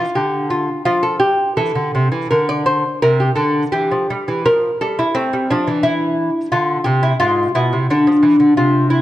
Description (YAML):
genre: classical, baroque-style dance for lute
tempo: 86 BPM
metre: 3/4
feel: rubato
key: unclear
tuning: A4 = 441 Hz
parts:
  - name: lute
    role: solo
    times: 0.0-9.0 s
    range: G#2 to D5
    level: -14 LUFS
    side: equal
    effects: none
room: moderate recital hall reverb, RT60 1.9 s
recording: none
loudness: -14 LUFS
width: side -14 dB against mid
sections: 0.0-9.0 A section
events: none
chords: 0.2 N.C.; 0.9 F; 4.4 Fmaj9; 5.1 Am (rootless); 7.2 E7/G#